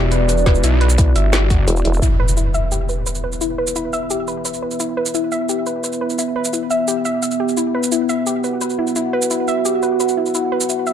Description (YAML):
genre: dark technical drum and bass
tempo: 173 BPM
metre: 4/4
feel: straight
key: E minor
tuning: A4 = 441 Hz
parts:
  - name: dark analog pad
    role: sustained chords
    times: 0.0-10.9 s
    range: B3 to F#5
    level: -22 LUFS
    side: right 1 dB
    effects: chorus, phaser, vintage 12-bit sampler grit, sidechain pumping
  - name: soft round pluck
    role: arpeggios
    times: 0.0-10.9 s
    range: E4 to E5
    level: -22 LUFS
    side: left 1 dB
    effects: chorus, sidechain pumping, dub echo
  - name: wide detuned saw bass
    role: bass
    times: 0.0-1.7 s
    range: E1 to B1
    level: -15 LUFS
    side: equal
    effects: chorus, tube saturation, sidechain pumping
  - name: drum and bass drum kit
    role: drums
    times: 0.1-10.9 s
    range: hi-hat, rim click, shaker, snare drum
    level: -23 LUFS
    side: right 2 dB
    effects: none
  - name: electronic kick drum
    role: drums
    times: 0.5-1.6 s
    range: none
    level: -14 LUFS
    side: equal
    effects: none
  - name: vowel-sweep wobble bass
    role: bass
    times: 1.7-2.0 s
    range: E1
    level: -16 LUFS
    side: equal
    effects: chorus
  - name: impact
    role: sound effects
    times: 2.0-3.4 s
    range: none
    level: -20 LUFS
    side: equal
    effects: none
room: light reverb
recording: dark, warm production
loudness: -16 LUFS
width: side -9 dB against mid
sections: 0.0-2.0 A section; 2.0-10.9 B section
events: kick drops out 1.7-2.0; impact 2.0-3.4; filter sweep on analog synth pad 2.0-10.9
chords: 0.0 E5